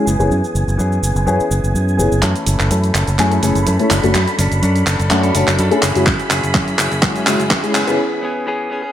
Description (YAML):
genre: filtered disco house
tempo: 125 BPM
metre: 4/4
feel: swing 54% on 16ths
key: F# minor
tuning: A4 = 442 Hz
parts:
  - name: dark concert grand piano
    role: accompaniment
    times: 0.0-8.0 s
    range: G#3 to A4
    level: -18 LUFS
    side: left 2 dB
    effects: phaser, sidechain pumping, low-pass filter
  - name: phased string machine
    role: sustained chords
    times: 0.0-8.0 s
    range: G#5 to B6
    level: -27 LUFS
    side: right 2 dB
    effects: ensemble chorus, phaser, vintage 12-bit sampler grit, sidechain pumping, low-pass filter
  - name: direct-recorded clean electric guitar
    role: riff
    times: 0.0-8.9 s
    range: E3 to A4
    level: -22 LUFS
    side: left 1 dB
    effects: sidechain pumping, low-pass filter
  - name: overdriven fingered electric bass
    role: bass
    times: 0.1-8.0 s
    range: F#1 to F#2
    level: -17 LUFS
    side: equal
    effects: sidechain pumping, low-pass filter
  - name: house drum kit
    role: drums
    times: 0.1-8.0 s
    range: cabasa, handclaps, hi-hat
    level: -19 LUFS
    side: right 1 dB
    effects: sidechain pumping on perc, sidechain pumping on hats
  - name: electronic kick drum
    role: drums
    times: 6.1-7.6 s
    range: none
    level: -18 LUFS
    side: equal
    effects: none
room: moderate plate reverb, RT60 1.9 s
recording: high-pass filter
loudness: -13 LUFS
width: side -11 dB against mid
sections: 0.0-2.2 A section; 2.2-8.9 B section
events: build-up 2.2-8.9; drum fill 2.2-8.0; filter sweep 2.2-8.9; break 8.0-8.9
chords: 0.1 F#9sus4; 2.2 F#m7; 3.9 Bm9/F#; 5.8 F#9sus4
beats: | 0.31 0.79 1.27 1.75 | 2.23 2.71 3.19 3.67 | 4.15 4.63 5.11 5.59 | 6.07 6.55 7.03 7.51 | 7.99 8.47